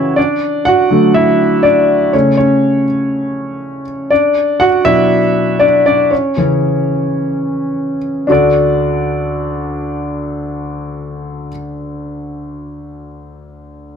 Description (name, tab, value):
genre	pop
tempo	104-122 BPM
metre	4/4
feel	straight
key	D major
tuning	A4 = 438 Hz
part	clear grand piano	solo	0.0-14.0 s	D2 to F#5	-12 LUFS	equal	none
room	light reverb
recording	dark, warm production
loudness	-11 LUFS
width	side -7 dB against mid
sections	0.2-8.3 A section; 8.3-12.9 B section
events	grand piano solo 0.2-8.3; slowing down 4.1-8.3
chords	0.2 D; 2.1 A/C#; 4.1 Bm; 6.1 C#m; 8.3 D